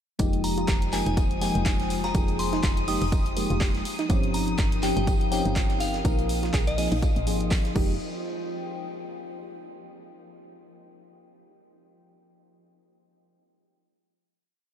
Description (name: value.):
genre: deep house.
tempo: 123 BPM.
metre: 4/4.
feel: swing 56% on 16ths.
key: F minor.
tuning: A4 = 440 Hz.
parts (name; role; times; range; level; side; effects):
soft round pluck; arpeggios; 0.2-8.0 s; Eb4 to Ab4; -37 LUFS; right 4 dB; none.
mellow FM electric piano; stabs; 0.2-7.9 s; F3 to Bb4; -30 LUFS; equal; chorus, phaser, sidechain pumping, analog delay.
woody FM bass; bass; 0.2-8.0 s; F1 to Bb1; -29 LUFS; equal; tube saturation, sidechain pumping.
electronic kick drum; drums; 0.2-7.9 s; none; -25 LUFS; equal; none.
gated 80s drum kit; drums; 0.2-7.8 s; hi-hat, snare drum, tambourine; -42 LUFS; right 2 dB; none.
punchy analog drum machine; drums; 0.2-7.9 s; crash cymbal, handclaps, hi-hat; -35 LUFS; equal; none.
soft string machine; texture; 0.4-8.0 s; Eb6; -42 LUFS; equal; ensemble chorus.
warbly tape-like pad; texture; 0.8-9.9 s; Eb4 to C6; -38 LUFS; left 1 dB; chorus, built-in reverb, sidechain pumping.
glassy synth bell; melody; 0.4-7.2 s; Eb5 to Eb6; -33 LUFS; left 2 dB; chorus, analog delay.
room: moderate huge ambient reverb, RT60 7.8 s.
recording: dreamy mix soaked in reverb.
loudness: -23 LUFS.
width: side -9 dB against mid.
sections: 0.2-8.0 drop; 8.0-10.0 final note.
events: drop 0.2-8.0.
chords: 0.2 Fm11; 3.9 Eb13/G; 6.0 Bb9sus4; 7.8 Fm11; 8.0 Fsus2.